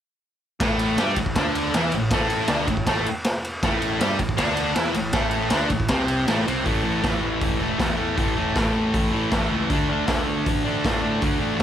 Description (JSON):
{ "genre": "garage rock duo or trio", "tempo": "158 BPM", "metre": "4/4", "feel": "straight", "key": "unclear", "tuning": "A4 = 440 Hz", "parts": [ { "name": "thick fuzz guitar", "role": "riff", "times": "0.6-11.6 s", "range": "A2 to G4", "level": "-22 LUFS", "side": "equal", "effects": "distortion" }, { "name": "growling picked electric bass", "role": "bass", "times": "0.6-11.6 s", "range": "E1 to A2", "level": "-30 LUFS", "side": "equal", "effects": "overdrive" }, { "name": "raw garage drum kit", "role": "drums", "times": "0.6-11.6 s", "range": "hi-hat, kick drum, ride cymbal, snare drum", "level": "-24 LUFS", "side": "equal", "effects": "none" } ], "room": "light reverb", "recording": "none", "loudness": "-20 LUFS", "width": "side -10 dB against mid", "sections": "0.6-6.7 A section; 6.7-11.6 B section", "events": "none", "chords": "0.6 A5; 9.7 D5" }